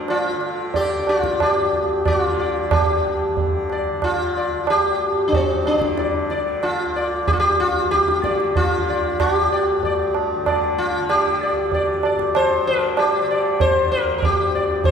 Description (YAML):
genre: indian classical, Hindustani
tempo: 93 BPM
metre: 5/4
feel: straight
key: unclear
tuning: A4 = 440 Hz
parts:
  - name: tanpura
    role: drone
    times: 0.0-14.9 s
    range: D2 to D3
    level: -30 LUFS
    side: equal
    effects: none
  - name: sitar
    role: melody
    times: 0.1-14.9 s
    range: C4 to D5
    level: -19 LUFS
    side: left 1 dB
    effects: none
  - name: tabla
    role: percussion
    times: 0.1-14.9 s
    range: none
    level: -23 LUFS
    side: right 3 dB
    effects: none
room: wet church reverb, RT60 2.7 s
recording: recorded in a church or concert hall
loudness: -17 LUFS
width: side -7 dB against mid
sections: 0.0-2.7 A section; 2.7-14.9 B section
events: speeding up 0.0-14.9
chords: none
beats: 0.09 0.75 1.41 2.07 | 2.73 3.38 4.04 4.69 5.34 | 5.99 6.63 7.28 7.92 8.56 | 9.20 9.84 10.47 11.10 11.73 | 12.36 12.98 13.61 14.23 14.85